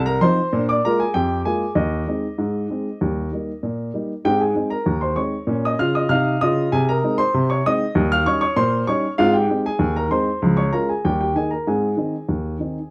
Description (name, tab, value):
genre	ragtime piano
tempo	97 BPM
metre	2/4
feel	straight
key	Ab major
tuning	A4 = 440 Hz
part	warm upright piano	solo	0.0-12.9 s	C2 to F6	-21 LUFS	equal	none
room	moderate studio reverb, RT60 0.7 s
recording	dark, warm production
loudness	-21 LUFS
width	mono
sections	0.0-12.9 A section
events	none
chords	0.0 F7(no3); 0.5 Bb7; 1.8 Ab/Eb; 3.0 Eb; 4.3 Ab; 5.5 Eb5/Bb; 6.7 Ab/C; 8.0 Eb7; 9.2 Ab; 10.4 Db; 11.0 Eb; 11.7 Ab